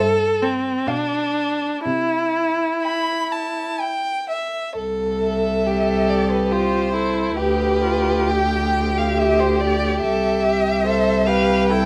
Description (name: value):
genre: classical, slow romantic movement for string quartet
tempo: 59-72 BPM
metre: 3/4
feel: rubato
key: C major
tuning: A4 = 439 Hz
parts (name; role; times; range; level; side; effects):
- rich violin; melody; 0.0-11.9 s; B4 to G5; -25 LUFS; equal; none
- rich violin; second line; 0.0-11.9 s; E4 to B5; -25 LUFS; equal; none
- clear viola; accompaniment; 0.0-11.9 s; C4 to A4; -24 LUFS; equal; none
- rich cello; bass; 0.0-11.9 s; C2 to C3; -25 LUFS; equal; none
room: light reverb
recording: none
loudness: -20 LUFS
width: mono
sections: 0.0-4.8 A section; 4.8-11.9 A section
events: none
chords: 0.0 C/G; 0.9 G7/B; 1.9 C; 7.4 G/D; 10.0 C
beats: 0.87 | 1.86 2.84 3.82 | 4.78 5.66 6.51 | 7.37 8.31 9.18 | 10.03 10.86 11.70